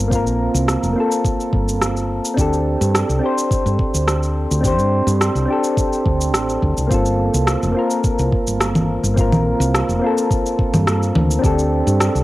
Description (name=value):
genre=sunset chillout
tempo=106 BPM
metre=4/4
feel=straight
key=G minor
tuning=A4 = 440 Hz
part: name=soft electric-piano-like synth keys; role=accompaniment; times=0.0-12.2 s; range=Bb3 to C5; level=-19 LUFS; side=equal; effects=chorus, auto-pan, cassette tape, tape echo
part: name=woody fretless electric bass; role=bass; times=0.0-12.2 s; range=F1 to G2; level=-19 LUFS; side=equal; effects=tube saturation
part: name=electronic kick drum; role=drums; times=0.1-11.6 s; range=none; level=-20 LUFS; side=equal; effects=cassette tape
part: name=electronic shaker, rim click and congas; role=drums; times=0.1-12.2 s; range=none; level=-22 LUFS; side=equal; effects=cassette tape
room=light reverb, digital ambience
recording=home recording on cassette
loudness=-15 LUFS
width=side -17 dB against mid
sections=0.0-6.9 A section; 6.9-12.2 B section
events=none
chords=0.0 Gm11; 2.4 D7sus4; 6.9 Gm11; 11.4 D7sus4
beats=| 0.12 0.68 1.25 1.81 | 2.38 2.95 3.51 4.08 | 4.65 5.21 5.78 6.34 | 6.91 7.48 8.04 8.61 | 9.17 9.74 10.31 10.87 | 11.44 12.00